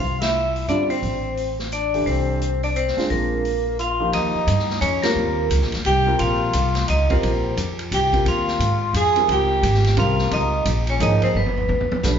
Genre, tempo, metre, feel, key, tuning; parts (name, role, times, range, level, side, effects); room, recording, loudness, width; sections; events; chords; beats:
modal jazz; 175 BPM; 3/4; swing 63% on 8ths; Eb mixolydian from 4.1 s; A4 = 439 Hz
vibraphone with medium hard mallets; melody; 0.0-12.0 s; Bb4 to Ab5; -23 LUFS; right 2 dB
breathy tenor saxophone; second line; 0.0-12.0 s; Bb3 to Ab4; -26 LUFS; left 2 dB
upright bass; bass; 0.0-12.2 s; G1 to Ab2; -22 LUFS; equal
vintage drum kit; drums; 0.0-12.1 s; hi-hat, kick drum, ride cymbal, snare drum, toms; -29 LUFS; equal
warm grand piano; accompaniment; 0.7-12.2 s; D3 to B4; -27 LUFS; right 1 dB
wet large studio reverb, RT60 1.2 s; band playing live in one room, nothing above 7.5 kHz; -18 LUFS; side -8 dB against mid
0.0-4.1 A section; 4.1-12.2 B section
band accent 0.2, 5.0; drum fill 11.3-12.0
0.0 Fadd9 (rootless); 3.1 Bb7; 4.1 Eb69; 8.3 Dbadd9; 11.3 G
| 0.00 0.34 0.69 | 1.03 1.37 1.72 | 2.06 2.41 2.75 | 3.10 3.44 3.79 | 4.13 4.47 4.82 | 5.16 5.50 5.85 | 6.19 6.54 6.88 | 7.22 7.57 7.91 | 8.25 8.60 8.94 | 9.29 9.63 9.97 | 10.32 10.66 11.00 | 11.35 11.69 12.03